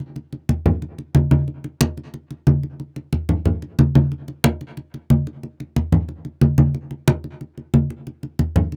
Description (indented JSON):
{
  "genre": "jazz",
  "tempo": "182 BPM",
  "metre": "4/4",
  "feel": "straight",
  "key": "none",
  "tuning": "none",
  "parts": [
    { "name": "congas", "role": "percussion", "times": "0.0-8.8 s", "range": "none", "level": "-20 LUFS", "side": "equal", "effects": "none" }
  ],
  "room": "light reverb",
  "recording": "recorded outdoors, with no room sound",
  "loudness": "-21 LUFS",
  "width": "mono",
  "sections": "0.0-8.8 A section",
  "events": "none",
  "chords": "none"
}